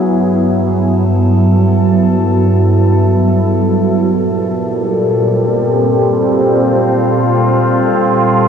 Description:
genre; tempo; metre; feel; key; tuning
ambient; free time; none; none; unclear; A4 = 443 Hz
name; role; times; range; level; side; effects
evolving wavetable pad; solo; 0.0-8.5 s; G2 to A4; -10 LUFS; equal; phaser, built-in reverb, ping-pong delay
room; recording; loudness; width
wet huge ambient reverb, RT60 8.4 s; worn, warbling old tape, cassette tape, warbly pitch drift; -10 LUFS; side -7 dB against mid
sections
0.0-8.5 A section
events
none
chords
0.0 Gmaj7; 4.0 Bbsus2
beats
free time

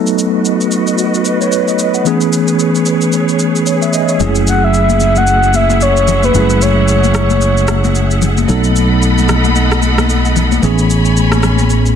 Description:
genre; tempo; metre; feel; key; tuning
amapiano; 112 BPM; 4/4; swing 58% on 16ths; F# dorian; A4 = 441 Hz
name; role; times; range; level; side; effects
tine electric piano; accompaniment; 0.0-12.0 s; E3 to F#5; -14 LUFS; equal; medium stereo tremolo, low-pass filter
warm studio string section; sustained chords; 0.0-12.0 s; A3 to B5; -19 LUFS; equal; low-pass filter
electronic shaker and rim click; drums; 0.1-12.0 s; none; -21 LUFS; equal; vintage 12-bit sampler grit, soft clipping on snare
fingered electric bass; bass; 4.2-12.0 s; F#1 to B1; -13 LUFS; equal; none
congas; percussion; 4.2-11.7 s; none; -20 LUFS; left 12 dB; none
breathy flute-like synth lead; melody; 4.5-8.2 s; B4 to F#5; -14 LUFS; equal; chorus, low-pass filter, ping-pong delay
room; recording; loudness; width
light reverb; dense, heavily limited modern master; -10 LUFS; side -8 dB against mid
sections
0.0-12.0 A section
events
filter sweep 0.0-12.0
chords
0.0 B7; 2.1 Amaj9; 4.2 F#m9; 8.5 B7; 10.6 Amaj9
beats
0.45 0.99 1.52 | 2.06 2.59 3.13 3.67 | 4.20 4.74 5.27 5.81 | 6.34 6.88 7.42 7.95 | 8.49 9.02 9.56 10.09 | 10.63 11.16 11.70

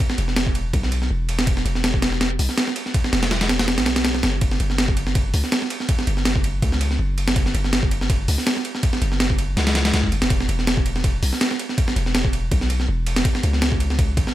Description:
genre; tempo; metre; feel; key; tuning
drum and bass, jungle; 163 BPM; 4/4; swing 54% on 16ths; unclear; A4 = 441 Hz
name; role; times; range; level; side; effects
breakbeat sampler-style drum kit; drums; 0.0-14.3 s; hi-hat, kick drum, ride cymbal, snare drum; -20 LUFS; equal; overdrive
long sustained 808-style bass; bass; 0.2-14.3 s; E1 to C#2; -22 LUFS; equal; none
room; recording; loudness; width
little or no reverb; none; -18 LUFS; side -14 dB against mid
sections
0.0-14.3 A section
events
kick drops out 3.7-4.4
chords
none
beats
| 0.00 0.37 0.74 1.10 | 1.47 1.84 2.21 2.58 | 2.94 3.31 3.68 4.05 | 4.42 4.79 5.15 5.52 | 5.89 6.26 6.62 6.99 | 7.36 7.73 8.10 8.47 | 8.83 9.20 9.57 9.94 | 10.31 10.67 11.04 11.41 | 11.78 12.15 12.52 12.88 | 13.25 13.62 13.99

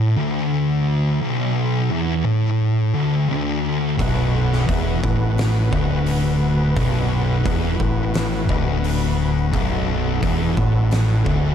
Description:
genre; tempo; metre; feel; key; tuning
stoner and doom metal; 87 BPM; 4/4; straight; B minor; A4 = 438 Hz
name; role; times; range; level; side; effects
thick fuzz guitar; riff; 0.0-11.5 s; B1 to A2; -21 LUFS; left 7 dB; distortion
thick fuzz guitar; riff; 0.0-11.5 s; B1 to A2; -22 LUFS; right 6 dB; distortion
overdriven tonewheel organ; sustained chords; 4.0-11.5 s; B3 to B4; -30 LUFS; equal; chorus vibrato, lush chorus
growling picked electric bass; bass; 4.0-11.5 s; B0 to A1; -24 LUFS; equal; overdrive
oversized low-tuned drum kit; drums; 4.0-11.4 s; hi-hat, kick drum, snare drum; -25 LUFS; equal; none
room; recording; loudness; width
moderate large studio reverb, RT60 1.4 s, small room ambience; dark, warm production; -17 LUFS; side -8 dB against mid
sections
0.0-11.5 A section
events
none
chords
0.0 Bm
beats
0.53 | 1.22 1.91 2.61 3.30 | 3.99 4.68 5.38 6.07 | 6.76 7.45 8.14 8.83 | 9.52 10.22 10.91

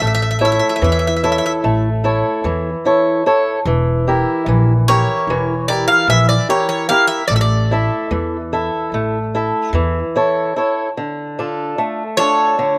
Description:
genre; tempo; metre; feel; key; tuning
greek folk, Greek bouzouki band; 148 BPM (eighths); 9/8; straight; unclear; A4 = 440 Hz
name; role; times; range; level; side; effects
Greek bouzouki; melody; 0.0-12.8 s; C#5 to F5; -19 LUFS; equal; slapback echo
fingerpicked swing-style acoustic guitar; accompaniment; 0.0-12.8 s; D3 to E5; -20 LUFS; equal; none
upright bass; bass; 0.0-10.0 s; E1 to E2; -20 LUFS; equal; none
room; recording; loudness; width
little or no reverb; recorded outdoors, with no room sound; -17 LUFS; mono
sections
0.0-10.9 A section; 10.9-12.8 A section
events
none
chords
0.0 A; 3.7 Edim; 7.3 A; 10.9 Dm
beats
| 0.01 0.42 0.82 1.23 1.63 2.04 2.44 2.85 3.25 | 3.66 4.06 4.47 4.87 5.28 5.68 6.09 6.49 6.90 | 7.30 7.71 8.11 8.52 8.92 9.32 9.73 10.13 10.54 | 10.94 11.35 11.75 12.16 12.56

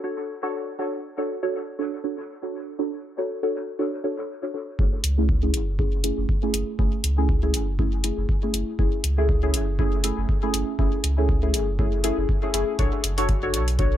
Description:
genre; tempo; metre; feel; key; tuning
dub techno; 120 BPM; 4/4; swing 56% on 16ths; F# minor; A4 = 440 Hz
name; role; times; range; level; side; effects
deep mellow chord stab; stabs; 0.0-14.0 s; A3 to C#5; -26 LUFS; equal; chorus, phaser, sidechain pumping, dub echo
warm sub bass; bass; 4.8-14.0 s; F#1 to C#2; -25 LUFS; equal; tube saturation, sidechain pumping
electronic kick drum; drums; 4.8-13.9 s; none; -24 LUFS; equal; none
electronic hi-hat; drums; 5.0-13.9 s; none; -27 LUFS; left 1 dB; none
room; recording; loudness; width
little or no reverb; echo-heavy mix; -22 LUFS; side -12 dB against mid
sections
0.0-4.8 A section; 4.8-14.0 B section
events
none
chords
0.0 Dmaj7; 4.8 F#m7; 12.8 Bm7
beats
0.29 | 0.79 1.29 1.79 2.29 | 2.79 3.29 3.79 4.29 | 4.79 5.29 5.79 6.29 | 6.79 7.29 7.79 8.29 | 8.79 9.29 9.79 10.29 | 10.79 11.29 11.79 12.29 | 12.79 13.29 13.79

